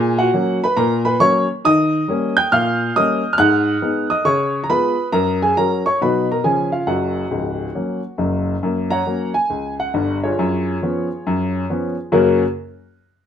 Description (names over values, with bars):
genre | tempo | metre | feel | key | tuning
jazz, stride piano | 137 BPM | 4/4 | swing 64% on 8ths | F# major | A4 = 440 Hz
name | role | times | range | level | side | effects
clear upright piano | solo | 0.0-12.4 s | C#1 to G6 | -16 LUFS | equal | none
room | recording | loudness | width
moderate club reverb, RT60 0.7 s | none | -16 LUFS | side -8 dB against mid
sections
0.0-8.6 A section; 8.6-12.1 B section; 12.1-13.3 C section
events
none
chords
0.0 F#/A#; 1.6 D#7; 3.4 G#m7; 4.3 C#7; 5.1 F#; 6.0 B; 6.4 C#; 6.9 F#; 10.4 C#7/F#; 12.1 F#